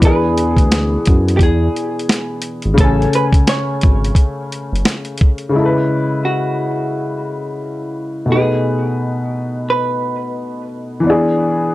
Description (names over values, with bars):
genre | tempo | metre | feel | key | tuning
lo-fi hip hop | 87 BPM | 4/4 | swing 61% on 16ths | C# minor | A4 = 439 Hz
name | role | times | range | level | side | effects
dark upright piano | accompaniment | 0.0-11.7 s | B2 to G#5 | -18 LUFS | left 1 dB | cassette tape, low-pass filter
smooth synth bass | bass | 0.0-4.8 s | F#1 to F#2 | -16 LUFS | equal | none
boom bap sampler-style drum kit | drums | 0.0-5.5 s | hi-hat, kick drum, snare drum | -13 LUFS | equal | none
vintage hollow-body jazz guitar | melody | 0.1-10.7 s | F#4 to C#5 | -22 LUFS | right 1 dB | low-pass filter, analog delay
room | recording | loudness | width
light reverb | none | -14 LUFS | side -17 dB against mid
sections
0.0-5.5 A section; 5.5-11.7 B section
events
none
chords
0.0 E7; 2.8 Amaj7; 5.5 C#m7; 8.3 B7; 11.1 E7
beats
| 0.02 0.71 1.40 2.09 | 2.78 3.47 4.16 4.85 | 5.54 6.23 6.92 7.61 | 8.30 8.99 9.68 10.37 | 11.06 11.75